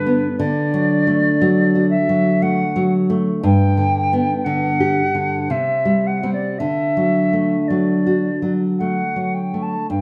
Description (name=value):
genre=romantic duo for flute and classical guitar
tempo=54-60 BPM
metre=3/4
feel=rubato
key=unclear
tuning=A4 = 443 Hz
part: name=silver concert flute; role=melody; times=0.0-10.0 s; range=B4 to A5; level=-24 LUFS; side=equal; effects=none
part: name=nylon-string guitar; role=accompaniment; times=0.0-10.0 s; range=G2 to G4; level=-19 LUFS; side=equal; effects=none
room=wet recital hall reverb, RT60 1.3 s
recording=dark, warm production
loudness=-18 LUFS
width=mono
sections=0.0-10.0 A section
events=none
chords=0.4 D; 3.4 G; 5.5 C; 6.6 D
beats=| 0.40 1.41 2.43 | 3.44 4.47 5.51 | 6.62 7.71 8.80 | 9.90